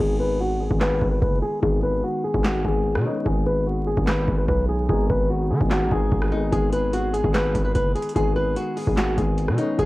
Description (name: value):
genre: hip hop, trap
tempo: 147 BPM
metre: 4/4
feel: half-time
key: G# minor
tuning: A4 = 440 Hz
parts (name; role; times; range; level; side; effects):
- flamenco guitar; melody; 0.0-9.9 s; D#4 to B4; -25 LUFS; equal; low-pass filter, cassette tape
- dark grand piano; accompaniment; 0.0-9.9 s; D#3 to G#4; -27 LUFS; left 4 dB; low-pass filter, cassette tape
- distorted 808-style bass; bass; 0.0-9.9 s; F#1 to D#3; -24 LUFS; equal; distortion
- booming analog drum machine; drums; 0.7-9.9 s; handclaps, hi-hat, kick drum, rim click, snare drum; -25 LUFS; equal; cassette tape
room: little or no reverb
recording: home recording on cassette, vinyl crackle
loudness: -20 LUFS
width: side -18 dB against mid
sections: 0.0-9.9 A section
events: break 0.0-6.5; filter sweep 0.0-6.5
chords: 0.0 G#m